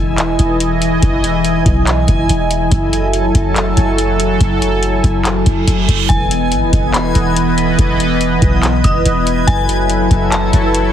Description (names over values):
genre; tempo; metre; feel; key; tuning
hip hop, atmospheric cloud-rap; 142 BPM; 4/4; half-time; E major; A4 = 440 Hz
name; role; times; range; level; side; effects
sweeping resonant pad; sustained chords; 0.0-10.9 s; E3 to G#5; -16 LUFS; equal; chorus, sidechain pumping
warm 808-style bass; bass; 0.0-10.9 s; E1 to B1; -16 LUFS; equal; none
backwards swelling texture; texture; 0.0-10.9 s; E4 to G#6; -23 LUFS; equal; built-in reverb
booming analog drum machine; drums; 0.2-10.8 s; handclaps, hi-hat, kick drum; -17 LUFS; equal; none
reverse cymbal; sound effects; 5.5-6.1 s; none; -22 LUFS; right 9 dB; none
dark detuned synth bell; melody; 6.1-10.9 s; G#5 to D#6; -21 LUFS; left 3 dB; chorus, ping-pong delay
room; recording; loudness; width
digital ambience; heavily compressed radio sound, multiband compression; -11 LUFS; side -10 dB against mid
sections
0.0-6.1 A section; 6.1-10.9 B section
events
reverse cymbal 5.5-6.1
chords
0.0 Emaj7; 2.7 F#m9; 6.1 Emaj7; 9.5 F#m9